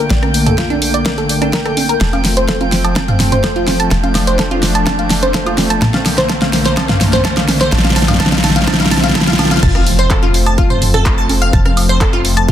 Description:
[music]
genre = progressive house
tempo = 126 BPM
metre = 4/4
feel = straight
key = F major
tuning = A4 = 441 Hz
[part]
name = warm analog pad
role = sustained chords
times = 0.0-12.5 s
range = D3 to D4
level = -19 LUFS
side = left 2 dB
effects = chorus, sidechain pumping
[part]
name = glassy wavetable pluck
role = arpeggios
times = 0.0-12.5 s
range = D4 to A6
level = -18 LUFS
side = equal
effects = chorus, cassette tape, sidechain pumping, dub echo
[part]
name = plucky analog bass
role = bass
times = 0.0-12.5 s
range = F1 to Bb1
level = -18 LUFS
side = equal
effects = tube saturation, sidechain pumping
[part]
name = drifting glass-harmonics texture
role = texture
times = 0.0-9.6 s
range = G5 to G6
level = -26 LUFS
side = right 3 dB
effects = chorus, built-in reverb, sidechain pumping
[part]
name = deep house drum kit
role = drums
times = 0.1-12.5 s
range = crash cymbal, handclaps, hi-hat, rim click, snare drum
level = -16 LUFS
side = equal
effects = overdrive, studio reverb
[part]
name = electronic kick drum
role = drums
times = 0.1-12.5 s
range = none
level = -16 LUFS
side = equal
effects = overdrive, high-pass filter on kick, studio reverb
[part]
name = electronic congas, toms and woodblock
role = percussion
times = 0.2-12.5 s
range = none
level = -20 LUFS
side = right 2 dB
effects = overdrive, sidechain pumping on perc, studio reverb, sidechain pumping on toms
[part]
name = riser and impact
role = sound effects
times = 4.5-11.5 s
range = none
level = -24 LUFS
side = equal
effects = none
[sound]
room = light reverb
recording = dense, heavily limited modern master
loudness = -11 LUFS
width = side -10 dB against mid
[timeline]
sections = 0.0-9.6 A section; 9.6-12.5 B section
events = build-up 0.0-9.6; drum fill 0.0-9.6; filter sweep on synth arpeggio sound 0.0-9.6; riser 4.5-9.6; drop 9.6-12.5; impact 9.6-11.5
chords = 0.0 Bbmaj7; 2.0 F; 5.8 Bbmaj7; 9.6 F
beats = | 0.10 0.58 1.06 1.53 | 2.01 2.48 2.96 3.44 | 3.91 4.39 4.87 5.34 | 5.82 6.29 6.77 7.25 | 7.72 8.20 8.68 9.15 | 9.63 10.10 10.58 11.06 | 11.53 12.01 12.48

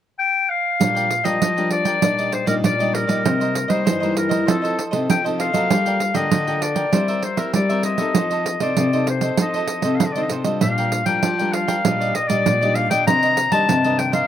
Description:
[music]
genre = samba and choro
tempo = 98 BPM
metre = 4/4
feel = straight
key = Bb major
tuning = A4 = 440 Hz
[part]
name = clear clarinet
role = melody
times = 0.2-14.3 s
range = A4 to Bb5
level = -21 LUFS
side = left 3 dB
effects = slapback echo
[part]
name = cavaquinho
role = accompaniment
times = 0.8-14.3 s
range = D4 to G5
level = -26 LUFS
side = right 4 dB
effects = slapback echo
[part]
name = nylon-string guitar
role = accompaniment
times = 0.8-14.3 s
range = G2 to Bb4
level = -26 LUFS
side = left 5 dB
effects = slapback echo
[part]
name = nylon-string guitar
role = bass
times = 0.8-14.2 s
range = Bb2 to G3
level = -25 LUFS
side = left 1 dB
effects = none
[part]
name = pandeiro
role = percussion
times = 0.8-14.3 s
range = none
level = -22 LUFS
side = right 6 dB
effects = none
[sound]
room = little or no reverb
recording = recorded outdoors, with no room sound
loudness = -17 LUFS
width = side -10 dB against mid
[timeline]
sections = 0.8-14.3 A section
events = none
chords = 0.0 N.C.; 0.8 Bb6; 2.0 Ebmaj7/Bb; 3.3 Cm7; 4.5 F7; 5.7 Gm9; 6.9 C7/G; 8.2 F7; 10.6 Bb6; 11.8 Ebmaj7/Bb; 13.1 Cm9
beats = 0.18 | 0.80 1.41 2.02 2.64 | 3.25 3.87 4.48 5.09 | 5.71 6.32 6.93 7.55 | 8.16 8.78 9.39 10.00 | 10.62 11.23 11.84 12.46 | 13.07 13.68

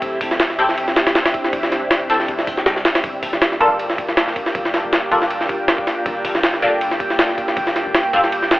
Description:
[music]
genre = drum and bass, jungle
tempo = 159 BPM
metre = 4/4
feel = swing 54% on 16ths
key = G dorian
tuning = A4 = 440 Hz
[part]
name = soft string machine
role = sustained chords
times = 0.0-8.6 s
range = Bb3 to G4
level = -23 LUFS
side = equal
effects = ensemble chorus
[part]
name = long sustained 808-style bass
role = bass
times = 0.0-8.6 s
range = D1 to C2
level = -39 LUFS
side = equal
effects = none
[part]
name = jungle sampler-style drum kit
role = drums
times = 0.0-8.6 s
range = hi-hat, kick drum, ride cymbal, snare drum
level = -18 LUFS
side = equal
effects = none
[part]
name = band-passed chord stab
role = stabs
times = 0.6-8.2 s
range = Bb3 to A4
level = -20 LUFS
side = equal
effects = phaser, ensemble chorus, dub echo
[part]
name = drifting glass-harmonics texture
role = texture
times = 4.0-8.6 s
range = G4 to G5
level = -25 LUFS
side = right 1 dB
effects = chorus, built-in reverb
[sound]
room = moderate digital room reverb, RT60 1.3 s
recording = telephone sound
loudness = -15 LUFS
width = side -18 dB against mid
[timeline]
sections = 0.0-3.0 A section; 3.0-8.6 A section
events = drop 0.0-3.0, 3.0-8.6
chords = 0.0 D9sus4; 3.0 Gm7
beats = | 0.02 0.40 0.78 1.15 | 1.53 1.91 2.28 2.66 | 3.04 3.42 3.79 4.17 | 4.55 4.93 5.30 5.68 | 6.06 6.43 6.81 7.19 | 7.57 7.94 8.32

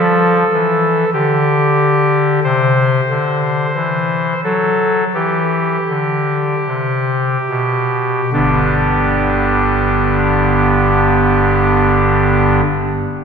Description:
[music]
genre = classical, chorale-style piece for pipe organ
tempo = 35-51 BPM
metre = 4/4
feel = rubato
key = G major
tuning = A4 = 440 Hz
[part]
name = pipe organ, soft reed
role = solo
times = 0.0-12.6 s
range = G1 to C5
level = -12 LUFS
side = equal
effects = none
[sound]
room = wet church reverb, RT60 3.4 s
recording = heard from further back in the room, nothing above 7.8 kHz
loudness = -12 LUFS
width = side -6 dB against mid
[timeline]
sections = 0.0-8.3 A section; 8.3-13.2 B section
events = slowing down 0.0-8.3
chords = 0.0 G7(no3); 2.4 C; 8.3 G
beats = 1.14 | 2.44 3.77 5.15 6.67 | 8.34 9.99 11.67

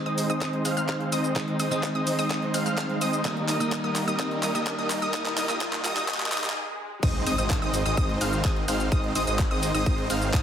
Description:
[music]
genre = EDM, festival progressive house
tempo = 127 BPM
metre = 4/4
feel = straight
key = Ab major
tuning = A4 = 440 Hz
[part]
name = clean electric guitar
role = accompaniment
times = 0.0-6.5 s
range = Eb3 to Eb4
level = -32 LUFS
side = right 1 dB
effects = sidechain pumping
[part]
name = riser, swell and impact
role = sound effects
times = 1.9-8.9 s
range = none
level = -37 LUFS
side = left 1 dB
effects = none
[part]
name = wide unison pluck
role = arpeggios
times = 0.1-10.4 s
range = Eb6 to F6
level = -31 LUFS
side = equal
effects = sidechain pumping, dub echo
[part]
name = supersaw chords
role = riff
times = 0.1-10.4 s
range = G3 to F5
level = -28 LUFS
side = equal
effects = sidechain pumping, low-pass filter, dub echo
[part]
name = pop drum kit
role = drums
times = 0.1-10.4 s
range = crash cymbal, handclaps, hi-hat, shaker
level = -32 LUFS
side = equal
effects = high-pass filter on hats, high-pass filter on snare, high-pass filter on perc, high-pass filter on cymbals, high-pass filter on room
[part]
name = electronic kick drum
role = drums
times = 0.4-10.4 s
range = none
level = -26 LUFS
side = equal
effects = high-pass filter on kick
[part]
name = wide detuned saw bass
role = bass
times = 7.0-10.4 s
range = Ab1 to Ab2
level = -30 LUFS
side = equal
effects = chorus, sidechain pumping
[sound]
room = wet digital room reverb, RT60 1.1 s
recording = heavily compressed radio sound, multiband compression, high-pass filter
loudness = -23 LUFS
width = side -9 dB against mid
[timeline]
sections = 0.0-7.0 A section; 7.0-10.4 B section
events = build-up 0.0-7.0; drum fill 0.0-6.6; filter sweep on supersaw synth 0.0-7.0; filter sweep 0.0-7.0; swell 6.1-7.0; stop 6.6-7.0; drop 7.0-10.4; impact 7.0-8.9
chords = 0.0 Ab; 3.2 Eb; 7.0 Ab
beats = 0.41 0.89 | 1.36 1.83 2.31 2.78 | 3.25 3.72 4.19 4.67 | 5.14 5.61 6.08 6.56 | 7.03 7.50 7.97 8.45 | 8.92 9.39 9.86 10.34

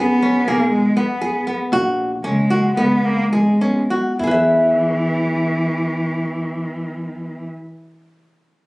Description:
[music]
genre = contemporary instrumental, chamber music in an uneven meter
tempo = 202-244 BPM (eighths)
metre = 9/8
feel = straight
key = E lydian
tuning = A4 = 440 Hz
[part]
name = warm cello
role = melody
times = 0.0-7.5 s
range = E3 to B3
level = -19 LUFS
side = equal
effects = none
[part]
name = bell-like tine electric piano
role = second line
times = 0.0-7.5 s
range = G#3 to C#4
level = -24 LUFS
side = equal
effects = none
[part]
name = nylon-string guitar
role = arpeggios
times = 0.0-7.6 s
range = B3 to E5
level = -19 LUFS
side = equal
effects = none
[part]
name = upright bass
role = bass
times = 0.0-7.4 s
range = G#1 to F#2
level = -31 LUFS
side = equal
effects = none
[sound]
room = light reverb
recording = recorded on a phone in the room, club reverb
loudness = -16 LUFS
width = side -23 dB against mid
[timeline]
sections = 0.0-4.2 A section; 4.2-6.9 B section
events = slowing down 0.0-4.2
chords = 0.5 B5; 1.7 F#add9/A#; 2.8 C#5; 4.2 E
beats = 0.23 0.47 0.72 0.97 1.22 1.48 | 1.73 1.99 2.25 2.52 2.79 3.06 3.34 3.62 3.91 | 4.20 4.49 4.79 5.09 5.38 5.68 5.98 6.27 6.57

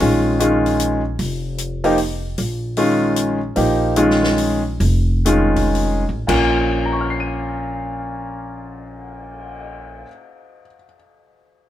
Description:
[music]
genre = modal jazz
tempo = 106-152 BPM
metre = 3/4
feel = swing 64% on 8ths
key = Bb minor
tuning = A4 = 438 Hz
[part]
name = clear baby grand piano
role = accompaniment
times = 0.0-10.9 s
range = Bb2 to Eb7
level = -18 LUFS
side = left 1 dB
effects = none
[part]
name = upright bass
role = bass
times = 0.0-10.0 s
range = F1 to Bb1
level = -22 LUFS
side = equal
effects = none
[part]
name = open jazz drum kit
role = drums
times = 0.0-9.6 s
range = crash cymbal, cymbal swell, hi-hat, kick drum, snare drum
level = -28 LUFS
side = left 3 dB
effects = none
[sound]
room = light reverb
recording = minimal, uncompressed stereo recording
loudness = -16 LUFS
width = side -12 dB against mid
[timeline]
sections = 0.0-6.3 A section; 6.3-9.7 B section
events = slowing down 3.6-6.3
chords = 0.0 Bb7sus4; 6.3 Bbm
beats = | 0.00 0.40 0.79 | 1.19 1.59 1.98 | 2.38 2.77 3.17 | 3.56 3.96 4.37 | 4.80 5.26 5.75 | 6.28 6.85 7.41 | 7.98 8.54 9.11

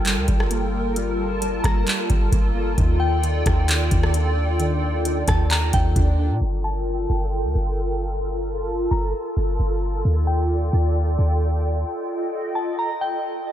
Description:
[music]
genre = hip hop, atmospheric cloud-rap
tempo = 132 BPM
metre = 4/4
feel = half-time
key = G minor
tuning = A4 = 437 Hz
[part]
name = hollow soft pad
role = sustained chords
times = 0.0-13.5 s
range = F4 to A5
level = -26 LUFS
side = equal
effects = ensemble chorus, sidechain pumping
[part]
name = warbly lo-fi synth keys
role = arpeggios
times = 0.0-6.4 s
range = Eb3 to D4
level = -30 LUFS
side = right 1 dB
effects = chorus, tape echo
[part]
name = clean 808-style bass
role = bass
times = 0.0-11.8 s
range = G1 to Bb2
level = -22 LUFS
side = equal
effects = none
[part]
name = booming analog drum machine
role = drums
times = 0.1-6.2 s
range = handclaps, hi-hat, kick drum, rim click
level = -21 LUFS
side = equal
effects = none
[part]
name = glassy synth bell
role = melody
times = 1.6-13.5 s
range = G5 to Bb5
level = -31 LUFS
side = left 2 dB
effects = chorus, tremolo, tape echo
[sound]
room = light reverb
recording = low-pass filter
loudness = -19 LUFS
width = side -11 dB against mid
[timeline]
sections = 0.0-6.4 A section; 6.4-13.5 B section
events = filter sweep 6.4-13.5; break 11.9-13.5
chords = 0.0 Gm9; 2.8 Ebmaj9#11; 6.4 Gm9; 10.1 Ebmaj9#11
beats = 0.05 0.51 | 0.96 1.42 1.87 2.33 | 2.78 3.23 3.69 4.14 | 4.60 5.05 5.51 5.96 | 6.42 6.87 7.33 7.78 | 8.23 8.69 9.14 9.60 | 10.05 10.51 10.96 11.42 | 11.87 12.33 12.78 13.23

